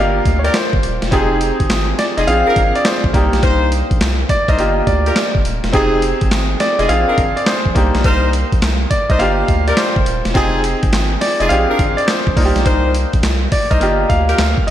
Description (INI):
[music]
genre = R&B, new jack swing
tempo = 104 BPM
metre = 4/4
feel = swing 66% on 16ths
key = F dorian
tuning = A4 = 439 Hz
[part]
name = clear concert grand piano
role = melody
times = 0.0-14.7 s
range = C5 to F5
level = -19 LUFS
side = equal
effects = digital delay, slapback echo
[part]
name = bright grand piano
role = accompaniment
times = 0.0-14.7 s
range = Bb3 to Ab4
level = -20 LUFS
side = right 1 dB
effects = slapback echo
[part]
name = round analog bass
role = bass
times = 0.0-14.7 s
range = Eb1 to D2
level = -18 LUFS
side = equal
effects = none
[part]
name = boom bap sampler-style drum kit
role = drums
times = 0.3-14.7 s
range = handclaps, hi-hat, kick drum, snare drum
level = -18 LUFS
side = equal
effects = none
[part]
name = warm horn section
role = stabs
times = 0.4-14.4 s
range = D4 to C5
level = -22 LUFS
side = left 2 dB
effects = digital delay, slapback echo
[sound]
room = moderate lush hall reverb, RT60 2.1 s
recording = big arena sound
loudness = -12 LUFS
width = side -11 dB against mid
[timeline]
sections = 0.0-14.7 A section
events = none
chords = 0.0 Gm7; 1.1 Fm7; 2.3 Bb7; 3.1 Cm7; 4.6 Gm7; 5.7 Fm7; 6.9 Bb7; 7.8 Cm7; 9.2 Gm7; 10.4 Fm7; 11.5 Bb7; 12.4 Cm7; 13.8 Gm7